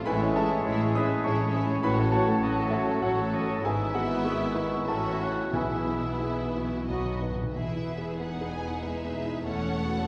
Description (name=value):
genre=classical, romantic movement for piano and orchestra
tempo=87-104 BPM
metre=3/4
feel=rubato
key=E major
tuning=A4 = 440 Hz
part: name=warm concert grand piano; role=melody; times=0.0-10.1 s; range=B1 to D#6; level=-32 LUFS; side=equal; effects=none
part: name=warm symphonic violin section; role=melody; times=0.0-10.1 s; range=A4 to G#5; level=-44 LUFS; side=equal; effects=none
part: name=mellow clarinet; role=second line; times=0.0-7.5 s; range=E4 to B4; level=-41 LUFS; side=equal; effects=none
part: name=warm symphonic violin section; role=second line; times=0.0-10.1 s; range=C#4 to C#5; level=-40 LUFS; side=equal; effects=none
part: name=warm bassoon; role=accompaniment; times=0.0-7.2 s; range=C#3 to G#3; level=-40 LUFS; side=equal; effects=none
part: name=warm symphonic viola section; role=accompaniment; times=0.0-10.1 s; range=F#3 to E4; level=-39 LUFS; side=equal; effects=none
part: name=dark French horn section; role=sustained chords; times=0.0-7.2 s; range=D#3 to C#4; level=-41 LUFS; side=equal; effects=none
part: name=clear oboe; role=second line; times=0.1-7.2 s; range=B4 to F#5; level=-40 LUFS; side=equal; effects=none
part: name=mellow silver concert flute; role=second line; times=0.1-7.2 s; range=E5 to C#6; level=-41 LUFS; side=equal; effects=none
part: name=mellow trumpet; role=stabs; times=0.1-7.2 s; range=E4 to G#4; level=-42 LUFS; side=equal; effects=none
part: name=dark tuba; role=bass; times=0.1-7.3 s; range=G#1 to B1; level=-40 LUFS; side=equal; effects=none
part: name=rich symphonic double bass section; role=bass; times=0.1-10.1 s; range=E1 to B1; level=-37 LUFS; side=equal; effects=none
part: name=warm symphonic cello section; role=bass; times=0.1-10.1 s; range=E2 to B2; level=-39 LUFS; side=equal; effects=none
part: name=timpani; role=percussion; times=5.5-7.5 s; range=B2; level=-41 LUFS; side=equal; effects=none
room=wet scoring stage reverb, RT60 1.8 s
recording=heard from further back in the room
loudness=-28 LUFS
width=mono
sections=0.0-7.5 A section; 7.5-10.1 B section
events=timpani fill 6.9-7.5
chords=0.1 Amaj7; 1.8 F#m/A; 3.6 E/G#; 4.9 A6; 5.5 E/B; 6.9 B; 7.5 E; 9.5 F#m7/E